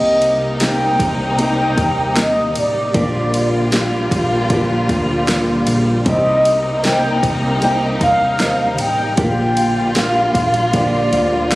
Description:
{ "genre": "pop ballad", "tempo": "77 BPM", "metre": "4/4", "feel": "straight", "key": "G minor", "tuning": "A4 = 441 Hz", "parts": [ { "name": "mellow horn-like synth lead", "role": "melody", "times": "0.0-11.6 s", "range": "D5 to G5", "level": "-17 LUFS", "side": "equal", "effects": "chorus" }, { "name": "dark upright piano", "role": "accompaniment", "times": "0.0-11.6 s", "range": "C3 to F5", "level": "-24 LUFS", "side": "equal", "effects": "none" }, { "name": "warm studio string section", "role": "sustained chords", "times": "0.0-11.6 s", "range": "C3 to F4", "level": "-21 LUFS", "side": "left 1 dB", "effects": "none" }, { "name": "fingerpicked plugged-in steel-string acoustic guitar", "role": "arpeggios", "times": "0.0-11.6 s", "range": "Bb2 to G4", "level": "-22 LUFS", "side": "right 1 dB", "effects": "digital delay" }, { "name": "woody fretless electric bass", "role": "bass", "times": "0.0-11.6 s", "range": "A1 to Eb2", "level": "-24 LUFS", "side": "equal", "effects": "wide subtle chorus" }, { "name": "deep house drum kit", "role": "drums", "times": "0.2-11.6 s", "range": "kick drum, ride cymbal, snare drum", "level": "-22 LUFS", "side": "equal", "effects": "none" } ], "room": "light reverb, digital ambience", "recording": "recorded on a phone in the room, studio reverb, compression", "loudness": "-14 LUFS", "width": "side -18 dB against mid", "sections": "0.0-11.6 A section", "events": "none", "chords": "0.0 Cm7; 2.9 Gm7/Bb; 6.1 Cm7; 9.2 Gm7/Bb", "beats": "0.61 1.39 2.17 | 2.94 3.72 4.50 5.28 | 6.06 6.84 7.62 8.40 | 9.18 9.96 10.74 11.52" }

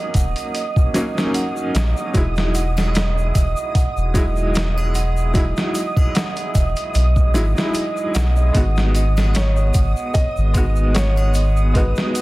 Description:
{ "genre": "trip hop", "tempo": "75 BPM", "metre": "4/4", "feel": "swing 54% on 16ths", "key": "unclear", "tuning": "A4 = 438 Hz", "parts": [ { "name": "bright upright piano", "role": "accompaniment", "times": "0.0-12.2 s", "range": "Gb3 to Gb4", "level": "-25 LUFS", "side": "equal", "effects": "tremolo, tape echo" }, { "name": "large celesta", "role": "arpeggios", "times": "0.0-12.2 s", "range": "Eb5 to Gb5", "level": "-28 LUFS", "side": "right 7 dB", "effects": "tape echo" }, { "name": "flickering grainy texture", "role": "texture", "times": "0.0-12.2 s", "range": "Eb6", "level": "-31 LUFS", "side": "right 1 dB", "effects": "built-in reverb" }, { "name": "warm sub bass", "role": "bass", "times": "0.1-11.9 s", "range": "Eb1 to B1", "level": "-18 LUFS", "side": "equal", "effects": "none" }, { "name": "boom bap sampler-style drum kit", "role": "drums", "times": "0.1-12.2 s", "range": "hi-hat, kick drum, snare drum", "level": "-20 LUFS", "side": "equal", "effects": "none" }, { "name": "tube shaker and triangle", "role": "percussion", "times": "0.2-12.2 s", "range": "none", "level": "-37 LUFS", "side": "left 4 dB", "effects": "none" }, { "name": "felt-muted upright piano", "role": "melody", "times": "9.4-12.2 s", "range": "Cb5 to Eb5", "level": "-27 LUFS", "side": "equal", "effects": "vintage 12-bit sampler grit, tape echo" } ], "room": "small room ambience", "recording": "dense, heavily limited modern master, vinyl crackle", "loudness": "-16 LUFS", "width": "side -19 dB against mid", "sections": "0.0-12.2 A section", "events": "none", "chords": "0.0 Ebm7; 2.2 Emaj9; 8.6 Abm7", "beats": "0.55 1.35 | 2.15 2.95 3.75 4.55 | 5.35 6.15 6.95 7.75 | 8.55 9.35 10.15 10.95 | 11.75" }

